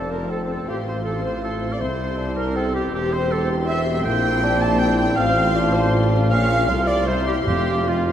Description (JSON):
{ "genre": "classical", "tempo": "159 BPM", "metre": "3/4", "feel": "rubato", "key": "F major", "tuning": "A4 = 435 Hz", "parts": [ { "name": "warm symphonic violin section", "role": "melody", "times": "0.0-8.1 s", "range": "A5 to Db6", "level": "-37 LUFS", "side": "left 4 dB", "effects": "none" }, { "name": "bright clarinet", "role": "second line", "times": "0.0-8.1 s", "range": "F4 to A5", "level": "-30 LUFS", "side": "right 3 dB", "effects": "none" }, { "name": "mellow hollow silver concert flute", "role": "second line", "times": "0.0-8.1 s", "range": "F4 to A5", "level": "-29 LUFS", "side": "left 3 dB", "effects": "none" }, { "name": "rich symphonic violin section", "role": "second line", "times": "0.0-8.1 s", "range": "F4 to A5", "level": "-30 LUFS", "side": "left 2 dB", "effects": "none" }, { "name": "warm oboe", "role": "second line", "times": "0.0-8.1 s", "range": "F4 to A5", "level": "-26 LUFS", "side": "right 3 dB", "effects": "none" }, { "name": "mellow bassoon", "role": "accompaniment", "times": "0.0-8.1 s", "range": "Bb3 to F4", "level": "-28 LUFS", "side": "equal", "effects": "none" }, { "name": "warm symphonic viola section", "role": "accompaniment", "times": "0.0-8.1 s", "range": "G3 to A4", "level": "-31 LUFS", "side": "left 3 dB", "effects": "none" }, { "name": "dark French horn section", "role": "sustained chords", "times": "0.0-8.1 s", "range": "G3 to G4", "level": "-27 LUFS", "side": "equal", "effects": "none" }, { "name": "mellow tuba", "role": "bass", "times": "0.0-8.1 s", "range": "E1 to C2", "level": "-28 LUFS", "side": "equal", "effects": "none" }, { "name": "rich symphonic cello section", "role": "bass", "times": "0.0-8.1 s", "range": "E2 to C3", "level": "-29 LUFS", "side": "equal", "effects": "none" }, { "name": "rich symphonic double bass section", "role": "bass", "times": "0.0-8.1 s", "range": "E1 to C2", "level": "-26 LUFS", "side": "equal", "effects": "none" }, { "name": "timpani", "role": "percussion", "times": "0.0-0.1, 7.5-8.0 s", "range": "F2", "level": "-30 LUFS", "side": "left 1 dB", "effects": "none" } ], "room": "wet cathedral reverb, RT60 6.1 s", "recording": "in a vast, echoing space", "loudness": "-18 LUFS", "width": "side -10 dB against mid", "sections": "0.0-8.1 A section", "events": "none", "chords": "0.0 F; 0.7 F/A; 1.8 C; 2.9 C/E; 4.1 C7/Bb; 5.2 F/A; 6.3 Bbm; 6.7 F/C; 7.1 C; 7.5 F" }